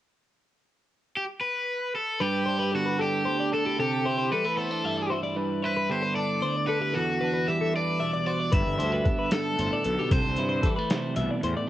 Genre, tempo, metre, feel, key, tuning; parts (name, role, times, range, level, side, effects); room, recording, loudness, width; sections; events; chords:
math rock and midwest emo; 76 BPM (dotted quarters); 6/8; straight; G major; A4 = 440 Hz
cranked stack guitar; melody; 1.2-10.7 s; F#4 to E5; -28 LUFS; equal; overdrive, cassette tape
twelve-string electric guitar; accompaniment; 2.2-11.7 s; D2 to F#4; -29 LUFS; right 4 dB; cassette tape
twelve-string electric guitar; arpeggios; 2.2-11.7 s; G4 to E5; -30 LUFS; left 4 dB; cassette tape
fuzz fingered electric bass; bass; 8.5-11.5 s; G1 to G2; -30 LUFS; equal; overdrive
lo-fi sampler-style drum kit; drums; 8.5-11.6 s; hi-hat, kick drum, snare drum; -26 LUFS; equal; cassette tape
light reverb, digital ambience; home recording on cassette; -24 LUFS; side -13 dB against mid
0.6-2.2 A section; 2.2-11.7 B section
0.6 N.C.; 2.2 G69; 3.8 C69; 5.4 G69; 6.9 Em9; 8.5 G69; 10.1 C69